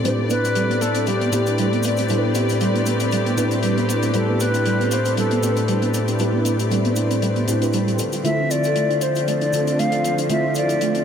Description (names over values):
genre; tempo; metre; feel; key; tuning
nu-disco, nu disco; 117 BPM; 4/4; swing 54% on 16ths; A minor; A4 = 439 Hz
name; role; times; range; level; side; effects
mellow tine electric piano; accompaniment; 0.0-11.0 s; A2 to B4; -21 LUFS; equal; ensemble chorus, tape echo
dark studio string section; sustained chords; 0.0-11.0 s; D3 to D5; -25 LUFS; left 2 dB; low-pass filter
soft round pluck; arpeggios; 0.0-11.0 s; G3 to A4; -25 LUFS; right 3 dB; ensemble chorus, tape echo
cabasa; percussion; 0.0-10.9 s; none; -36 LUFS; equal; none
hollow concert flute; melody; 0.1-11.0 s; G4 to F5; -24 LUFS; left 1 dB; tape echo
hi-hat; drums; 0.1-11.0 s; none; -32 LUFS; left 5 dB; none
room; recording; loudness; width
moderate huge ambient reverb, RT60 4.0 s; dreamy mix soaked in reverb; -18 LUFS; side -8 dB against mid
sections
0.0-11.0 A section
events
filter sweep on string section 0.0-11.0; filter sweep on synth arpeggio sound 0.0-11.0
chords
0.0 Am11; 8.0 Dm7